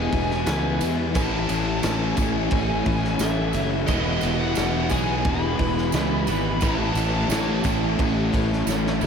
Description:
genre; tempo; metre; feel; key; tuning
rock, shoegaze and dream pop; 88 BPM; 4/4; straight; unclear; A4 = 440 Hz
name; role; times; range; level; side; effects
smooth overdriven lead guitar; melody; 0.0-8.6 s; D#5 to B5; -30 LUFS; left 1 dB; tape echo
deep dark ambient pad; sustained chords; 0.0-9.1 s; E4 to A5; -33 LUFS; equal; chorus, built-in reverb
twelve-string electric guitar; arpeggios; 0.0-9.1 s; E3 to G#4; -35 LUFS; right 1 dB; none
distorted electric guitar; riff; 0.0-9.1 s; A2 to E4; -29 LUFS; right 1 dB; overdrive
overdriven electric guitar; riff; 0.0-9.1 s; A2 to E4; -29 LUFS; left 10 dB; wide subtle chorus
fuzz fingered electric bass; bass; 0.0-9.1 s; E1 to E2; -26 LUFS; equal; overdrive
loose indie drum kit; drums; 0.1-9.1 s; kick drum, ride cymbal, snare drum; -27 LUFS; equal; none
tambourine; percussion; 0.5-9.1 s; none; -38 LUFS; right 20 dB; none
overdriven semi-hollow guitar; riff; 3.9-9.1 s; A2 to E4; -29 LUFS; right 9 dB; reverse reverb
room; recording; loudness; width
moderate plate reverb, RT60 2.6 s; dreamy mix soaked in reverb; -20 LUFS; side -6 dB against mid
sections
0.0-9.1 A section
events
drum fill 8.7-9.1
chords
0.0 Emaj7; 1.1 Amaj7; 3.9 Emaj7; 6.6 A

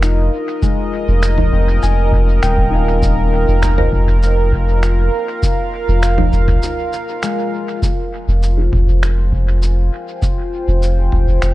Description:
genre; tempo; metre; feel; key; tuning
ambient dub; 100 BPM; 4/4; straight; unclear; A4 = 439 Hz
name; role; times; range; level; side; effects
warm analog pad; sustained chords; 0.0-11.5 s; F4 to Ab5; -21 LUFS; equal; chorus
concert harp; arpeggios; 0.0-7.9 s; Ab3 to Ab5; -25 LUFS; left 5 dB; dub echo
soft dub sub bass; bass; 0.0-11.5 s; Eb1 to F1; -14 LUFS; equal; none
lo-fi sampler-style drum kit; drums; 0.0-11.5 s; finger snaps, shaker, toms; -25 LUFS; equal; studio reverb, dub echo
electronic kick drum; drums; 0.6-11.4 s; none; -19 LUFS; equal; studio reverb
filtered dub chord stab; stabs; 1.4-11.2 s; F3 to Bb4; -26 LUFS; right 1 dB; phaser, wide subtle chorus, dub echo
room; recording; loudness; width
little or no reverb; echo-heavy mix; -13 LUFS; side -17 dB against mid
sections
0.0-7.8 A section; 7.8-11.5 B section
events
break 6.6-7.8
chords
0.0 Ebsus2

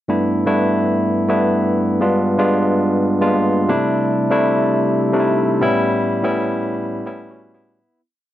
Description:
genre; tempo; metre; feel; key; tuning
disco; 125 BPM; 4/4; swing 56% on 16ths; unclear; A4 = 440 Hz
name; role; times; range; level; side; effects
barky tine electric piano; solo; 0.1-8.0 s; G2 to F#4; -15 LUFS; equal; overdrive
room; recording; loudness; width
light reverb; dry, close 1970s-style studio recording; -15 LUFS; side -13 dB against mid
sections
0.1-7.8 pre-chorus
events
fade-out 5.9-7.8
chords
0.1 G6; 2.0 G7b9; 3.7 C69; 5.6 A9

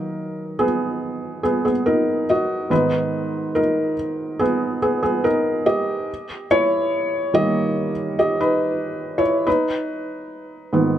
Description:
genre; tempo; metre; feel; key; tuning
pop; 71 BPM; 4/4; straight; G# minor; A4 = 444 Hz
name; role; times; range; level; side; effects
felt-muted upright piano; solo; 0.0-11.0 s; G#2 to D#5; -19 LUFS; equal; none
room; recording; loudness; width
light reverb; none; -18 LUFS; side -11 dB against mid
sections
0.0-11.0 A section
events
felt piano solo 0.0-11.0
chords
0.0 D#m; 2.7 G#madd9; 6.1 D#; 9.5 G#m

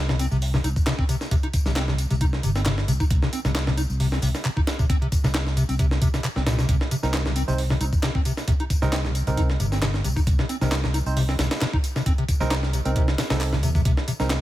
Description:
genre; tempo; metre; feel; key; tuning
breakbeat, breaks; 134 BPM; 4/4; swing 54% on 16ths; C minor; A4 = 440 Hz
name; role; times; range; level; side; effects
fingered electric bass; bass; 0.0-14.4 s; G1 to Eb2; -24 LUFS; equal; tube saturation
overdriven acid bass; riff; 0.1-14.2 s; Bb2 to Eb4; -27 LUFS; left 1 dB; lush chorus, cassette tape, digital delay
breakbeat sampler-style drum kit; drums; 0.1-14.4 s; hi-hat, kick drum, snare drum; -24 LUFS; equal; none
electronic tambourine and handclaps; drums; 0.2-14.4 s; none; -35 LUFS; left 1 dB; none
barky tine electric piano; stabs; 7.0-14.3 s; C4 to C5; -31 LUFS; right 5 dB; low-pass filter, digital delay
room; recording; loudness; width
little or no reverb; none; -20 LUFS; side -14 dB against mid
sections
0.0-14.4 A section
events
none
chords
0.0 Cm

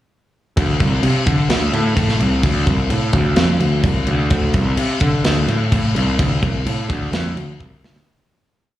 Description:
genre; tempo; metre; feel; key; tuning
hard rock; 128 BPM; 4/4; straight; D minor; A4 = 440 Hz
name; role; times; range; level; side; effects
fuzz picked electric bass; bass; 0.6-8.1 s; C2 to D3; -17 LUFS; equal; overdrive
tight metal drum kit; drums; 0.6-8.1 s; crash cymbal, kick drum, snare drum; -19 LUFS; equal; none
room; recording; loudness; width
little or no reverb; live gig heard through the venue's PA, club reverb, small room reverb; -15 LUFS; side -14 dB against mid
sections
0.6-8.1 riff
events
fade-out 6.2-8.1; drum fill 7.6-8.1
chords
none

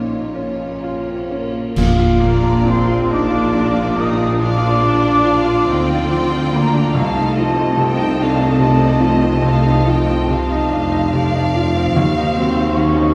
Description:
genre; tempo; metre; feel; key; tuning
classical, romantic movement for piano and orchestra; 41-50 BPM (dotted quarters); 12/8; rubato; Bb major; A4 = 439 Hz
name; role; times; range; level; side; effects
bright grand piano; melody; 0.0-13.1 s; C2 to Bb5; -20 LUFS; equal; none
rich studio violin section; melody; 0.0-13.1 s; Db5 to G5; -29 LUFS; equal; none
clear symphonic violin section; second line; 0.0-13.1 s; F4 to Eb5; -31 LUFS; equal; none
rich symphonic viola section; accompaniment; 0.0-13.1 s; A3 to Eb4; -26 LUFS; equal; none
mellow French horn section; sustained chords; 0.0-1.8 s; Bb3 to Eb4; -30 LUFS; equal; none
rich chamber double bass section; bass; 0.0-13.1 s; F1 to Eb2; -26 LUFS; equal; none
rich studio cello section; bass; 0.0-13.1 s; Eb2 to D3; -25 LUFS; equal; none
mellow tuba; bass; 1.8-13.1 s; F1 to Eb2; -26 LUFS; equal; none
clash cymbals and concert bass drum; percussion; 1.8-3.5 s; none; -27 LUFS; equal; none
timpani; percussion; 1.8-3.1 s; Bb2; -27 LUFS; equal; none
large flute ensemble; second line; 2.2-13.1 s; A5 to Eb6; -24 LUFS; equal; none
room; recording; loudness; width
wet scoring stage reverb, RT60 1.7 s; heard from further back in the room; -16 LUFS; mono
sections
0.0-1.8 A section; 1.8-13.1 B section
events
band accent 1.8-2.7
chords
0.0 Bbm; 1.8 Bb; 7.0 F7/C; 11.9 Cdim/Eb

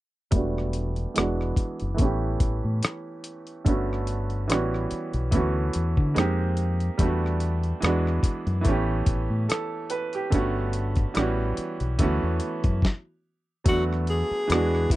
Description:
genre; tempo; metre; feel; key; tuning
R&B, neo-soul; 72 BPM; 4/4; swing 55% on 16ths; unclear; A4 = 440 Hz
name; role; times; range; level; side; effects
bright grand piano; accompaniment; 0.3-15.0 s; D3 to B4; -27 LUFS; right 2 dB; low-pass filter
deep dub fingered electric bass; bass; 0.3-14.9 s; E1 to D3; -26 LUFS; left 1 dB; none
dusty soul sampler-style drum kit; drums; 0.3-15.0 s; hi-hat, kick drum, rim click, snare drum; -24 LUFS; left 1 dB; none
breathy tenor saxophone; melody; 13.7-15.0 s; E4 to G#4; -26 LUFS; left 1 dB; slapback echo
room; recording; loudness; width
little or no reverb; dry, close 1970s-style studio recording; -23 LUFS; side -17 dB against mid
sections
0.3-13.7 A section; 13.7-15.0 B section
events
filter sweep on grand piano 0.3-13.7; stop 12.8-13.7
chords
0.3 Em11; 1.2 E9; 2.0 A9; 3.7 Gmaj9#11; 4.5 A13; 5.3 Dmaj13; 6.2 Fm11; 7.0 Em11; 7.8 E9; 8.7 A9; 10.3 Gmaj9#11; 11.2 A13; 12.0 Dmaj13; 12.8 N.C.; 13.7 E9sus4

